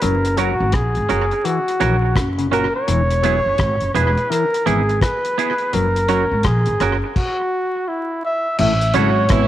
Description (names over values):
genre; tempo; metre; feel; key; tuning
roots reggae; 84 BPM; 4/4; swing 63% on 16ths; unclear; A4 = 440 Hz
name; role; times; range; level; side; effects
warm flugelhorn; melody; 0.0-9.5 s; E4 to E5; -20 LUFS; equal; tape echo
overdriven clav; arpeggios; 0.0-9.4 s; A2 to F#3; -26 LUFS; left 6 dB; phaser
upright bass; bass; 0.0-9.5 s; E1 to A#1; -19 LUFS; equal; none
cloth-damped thuddy drum kit; drums; 0.0-9.5 s; crash cymbal, hi-hat, kick drum, rim click; -23 LUFS; left 1 dB; tape echo
clean electric guitar; accompaniment; 0.4-9.1 s; B3 to A#4; -24 LUFS; right 8 dB; tape echo
warm horn section; second line; 8.9-9.5 s; E3 to F#4; -21 LUFS; right 9 dB; tape echo
room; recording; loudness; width
moderate plate reverb, RT60 2.3 s; 1960s-style stereo with parts hard left and right, vinyl crackle; -16 LUFS; side -12 dB against mid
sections
0.0-8.6 A section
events
stop 7.2-8.6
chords
0.0 F#; 2.9 E; 5.7 F#; 7.2 N.C.; 8.6 A